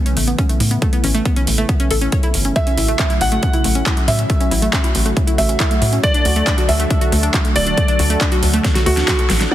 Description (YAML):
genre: uplifting trance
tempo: 138 BPM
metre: 4/4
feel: straight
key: unclear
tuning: A4 = 439 Hz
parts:
  - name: lush unison pad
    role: sustained chords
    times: 0.0-9.5 s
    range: C#3 to B4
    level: -24 LUFS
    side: equal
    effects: chorus, phaser, sidechain pumping
  - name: analog pluck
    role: arpeggios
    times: 0.1-9.5 s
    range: A3 to C#5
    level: -23 LUFS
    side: equal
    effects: chorus, sidechain pumping, tape echo
  - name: big-room dance drum kit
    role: drums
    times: 0.1-9.5 s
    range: crash cymbal, handclaps, hi-hat, snare drum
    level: -22 LUFS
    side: equal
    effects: overdrive, low-pass filter on hats, small room ambience, low-pass filter on snare, low-pass filter on cymbals
  - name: tight sequencer bass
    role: bass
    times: 0.2-9.5 s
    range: D1 to A2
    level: -18 LUFS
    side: equal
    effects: sidechain pumping
  - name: electronic kick drum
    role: drums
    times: 0.4-9.2 s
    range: none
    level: -18 LUFS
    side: equal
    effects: overdrive, small room ambience
  - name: felt-muted upright piano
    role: second line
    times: 2.6-9.5 s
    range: F#4 to F#5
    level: -21 LUFS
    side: equal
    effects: tape echo
  - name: big supersaw lead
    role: melody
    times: 9.5 s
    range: F#5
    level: -24 LUFS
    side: right 2 dB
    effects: sidechain pumping, low-pass filter
  - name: impact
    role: sound effects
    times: 9.5 s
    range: none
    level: -16 LUFS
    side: left 1 dB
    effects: none
room: light reverb, digital ambience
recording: heavily compressed radio sound, multiband compression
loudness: -14 LUFS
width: side -13 dB against mid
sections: 0.0-9.5 A section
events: filter sweep on analog synth pad 0.0-9.5; drum fill 8.6-9.5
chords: 0.0 Aadd9; 2.6 F#m7/A; 6.0 D